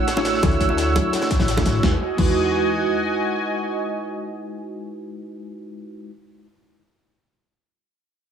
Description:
liquid drum and bass; 171 BPM; 4/4; straight; E major; A4 = 442 Hz
tine electric piano; accompaniment; 0.0-6.1 s; G#3 to C#5; -26 LUFS; equal; medium stereo tremolo, analog delay
lush unison pad; sustained chords; 0.0-5.4 s; F#4 to E6; -24 LUFS; right 3 dB; chorus, phaser, sidechain pumping
upright bass; bass; 0.0-2.8 s; A1 to F#2; -24 LUFS; left 1 dB
breakbeat sampler-style drum kit; drums; 0.1-2.3 s; crash cymbal, hi-hat, snare drum; -29 LUFS; left 2 dB; overdrive
crunchy breakbeat drum kit; drums; 0.1-1.7 s; hi-hat, snare drum; -31 LUFS; equal; high-pass filter on hats, high-pass filter on snare, high-pass filter on room, analog delay
bongos; percussion; 0.2-1.6 s; -30 LUFS; right 2 dB
electronic kick drum; drums; 0.4-2.3 s; -23 LUFS; equal
moderate spring reverb, RT60 1.4 s; echo-heavy mix; -18 LUFS; side -8 dB against mid
0.0-1.8 A section; 1.8-4.6 B section
0.0 Dmaj9; 1.8 Emaj9

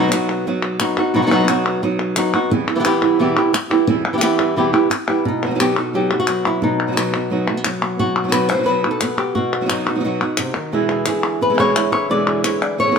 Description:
flamenco; 175 BPM; 4/4; straight; A4 = 439 Hz
flamenco guitar; melody; 0.0-13.0 s; B2 to D5; -18 LUFS; equal
flamenco guitar; stabs; 0.0-13.0 s; E2 to F#4; -22 LUFS; right 4 dB
palmas hand claps; percussion; 0.1-13.0 s; -22 LUFS; left 3 dB
moderate studio reverb, RT60 1.0 s; -16 LUFS; side -6 dB against mid
0.0-5.2 A section; 5.2-13.0 B section
0.0 B; 2.5 Em; 5.2 B; 10.7 E7

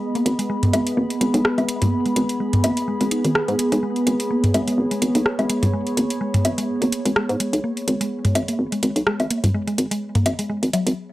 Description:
minimal techno; 126 BPM; 4/4; swing 55% on 16ths; G# minor; A4 = 438 Hz
warbly tape-like pad; texture; 0.0-11.0 s; B3 to B5; -24 LUFS; equal; chorus, built-in reverb
mallet-like synth pluck; riff; 0.2-10.8 s; D#3 to G#4; -26 LUFS; equal; chorus, tape echo
house drum kit; drums; 0.2-11.0 s; hi-hat, rim click; -24 LUFS; equal; studio ambience
hollow knocking FM bass; bass; 0.3-10.9 s; D#1 to G#2; -21 LUFS; equal; high-pass filter
electronic toms and woodblock; percussion; 0.6-10.8 s; -21 LUFS; equal; studio ambience
moderate studio reverb, RT60 0.6 s; dry, gritty hardware recording; -18 LUFS; side -16 dB against mid
0.0-11.1 A section
stop 11.0
0.0 G#m

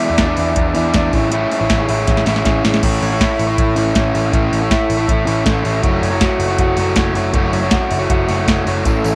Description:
jangly indie pop; 159 BPM; 4/4; straight; A4 = 440 Hz
crunchy overdriven guitar; accompaniment; 0.0-9.2 s; A2 to D5; -21 LUFS; equal
electric guitar through a small old amp; arpeggios; 0.0-9.2 s; E2 to F#4; -22 LUFS; equal; slapback echo
soft vintage rhythm box; drums; 0.0-9.1 s; crash cymbal, hi-hat, kick drum, snare drum; -21 LUFS; equal
vintage muted picked electric bass; bass; 0.1-9.2 s; F#1 to E2; -24 LUFS; equal
string machine, cellos; sustained chords; 8.9-9.2 s; A4 to E6; -25 LUFS; equal; ensemble chorus
tambourine; percussion; 8.9-9.1 s; -36 LUFS; equal
light reverb; -16 LUFS; mono
0.0-2.8 A section; 2.8-9.2 B section
drum fill 2.1-2.8
0.0 E7; 1.1 Amaj7; 2.8 A; 5.8 F#m7

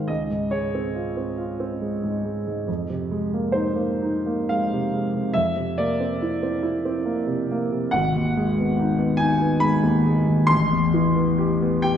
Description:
classical, impressionist solo piano; 70 BPM; 3/4; rubato; A4 = 440 Hz
clear concert grand piano; solo; 0.0-12.0 s; G#1 to C6; -20 LUFS; equal
wet recital hall reverb, RT60 1.4 s; heard from further back in the room; -20 LUFS; side -8 dB against mid
0.0-12.0 A section
0.1 Dbmaj7; 2.7 Fm7; 5.3 C9/F; 7.9 G#m7; 10.5 Am9

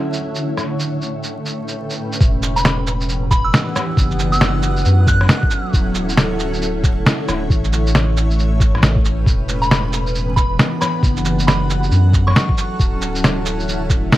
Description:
future garage; 136 BPM; 4/4; swing 62% on 16ths; E dorian; A4 = 440 Hz
granular cloud pad; sustained chords; 0.0-14.2 s; A2 to F#5; -22 LUFS; equal; built-in reverb, sidechain pumping
wind-like tuned noise texture; texture; 0.0-2.2 s; E5; -36 LUFS; equal; built-in reverb, wide subtle chorus
electronic shaker, rim click, cabasa and snare drum; drums; 0.1-14.2 s; -18 LUFS; equal
soft dub sub bass; bass; 2.2-14.1 s; D1 to F#2; -18 LUFS; equal; sidechain pumping
electronic kick drum; drums; 2.2-14.0 s; -16 LUFS; equal
soft synth bell; melody; 2.6-5.7, 9.6-12.7 s; B5 to F#6; -24 LUFS; right 1 dB; chorus, digital delay
digital ambience; bright 1980s-style digital production, vinyl crackle; -14 LUFS; side -15 dB against mid
0.0-2.2 A section; 2.2-14.2 B section
filter sweep on ambient pad 0.0-2.2
0.4 A7; 2.2 Em7; 4.0 F#m7; 5.7 Dmaj7; 7.5 A7; 9.3 Em7; 11.0 F#m7; 12.8 Dmaj7

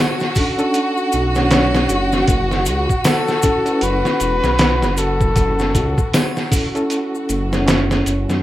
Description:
trip hop; 78 BPM; 4/4; swing 60% on 16ths; A4 = 443 Hz
trumpet with bucket mute; melody; 0.0-6.5 s; A4 to B4; -23 LUFS; left 2 dB; vintage 12-bit sampler grit, dub echo, plate reverb
reed electric piano; accompaniment; 0.0-8.4 s; C#4 to C#5; -22 LUFS; right 1 dB; overdrive, fast tremolo, harmonic tremolo, tape echo, plate reverb
rich chamber violin section; sustained chords; 0.0-8.4 s; F#4; -22 LUFS; equal; plate reverb
trip hop sampler-style drum kit; drums; 0.2-8.4 s; hi-hat, kick drum, snare drum; -18 LUFS; equal
maracas and triangle; percussion; 0.2-8.4 s; -31 LUFS; left 6 dB
dark detuned saw bass; bass; 1.1-8.4 s; E1 to F#2; -20 LUFS; equal
moderate small room reverb, RT60 0.5 s; rough home demo mix; -15 LUFS; side -14 dB against mid
0.0-8.4 A section
0.0 Bm9; 2.3 F#m7

